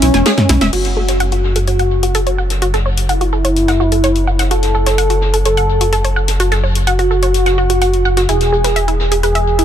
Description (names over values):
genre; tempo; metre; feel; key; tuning
melodic techno; 127 BPM; 4/4; straight; F# minor; A4 = 436 Hz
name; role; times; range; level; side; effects
wide unison lead; melody; 0.0-9.6 s; C#4 to A4; -17 LUFS; equal; dub echo
wide unison pluck; arpeggios; 0.0-9.6 s; E4 to G#5; -19 LUFS; right 2 dB; dub echo
dark detuned saw bass; bass; 0.0-9.6 s; E1 to B1; -16 LUFS; equal; none
punchy analog drum machine; drums; 0.0-9.6 s; crash cymbal, hi-hat, snare drum, toms; -20 LUFS; left 2 dB; overdrive, small room ambience
tight funk drum kit; drums; 0.0-9.6 s; hi-hat, snare drum; -27 LUFS; left 1 dB; high-pass filter on hats, low-pass filter on hats, small room ambience, high-pass filter on snare, low-pass filter on snare, high-pass filter on room, low-pass filter on room
room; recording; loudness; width
light reverb; none; -12 LUFS; side -10 dB against mid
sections
0.7-9.6 A section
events
drum fill 0.0-0.7; band accent 0.6; filter sweep on synth arpeggio sound 0.7-9.6; filter sweep on analog synth lead 0.7-9.6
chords
0.0 E; 0.7 F#m; 8.3 E